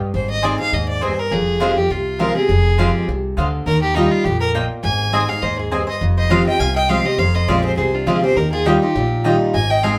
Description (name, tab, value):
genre	bluegrass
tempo	204 BPM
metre	4/4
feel	swing 54% on 8ths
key	F dorian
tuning	A4 = 439 Hz
part	picked steel-string acoustic guitar	accompaniment	0.0-10.0 s	F2 to Ab4	-21 LUFS	equal	none
part	upright bass	bass	0.1-9.9 s	F1 to Eb2	-25 LUFS	equal	none
part	warm fiddle	melody	0.2-10.0 s	Eb4 to Ab5	-24 LUFS	equal	none
part	mandolin	stabs	0.4-9.9 s	Ab3 to Ab5	-25 LUFS	equal	none
part	lap resonator guitar	second line	5.4-10.0 s	D4 to F5	-28 LUFS	equal	none
room	wet studio reverb, RT60 0.7 s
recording	band playing live in one room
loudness	-18 LUFS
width	mono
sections	0.0-10.0 A section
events	none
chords	0.1 Ab; 1.3 Fmadd9; 3.7 Ebadd9; 4.8 Ab; 6.0 Fmadd9; 8.4 Ebadd9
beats	| 0.14 0.44 0.73 1.02 | 1.32 1.61 1.91 2.20 | 2.49 2.79 3.08 3.38 | 3.67 3.96 4.26 4.55 | 4.84 5.14 5.43 5.72 | 6.02 6.31 6.61 6.90 | 7.19 7.49 7.78 8.07 | 8.37 8.66 8.96 9.25 | 9.54 9.84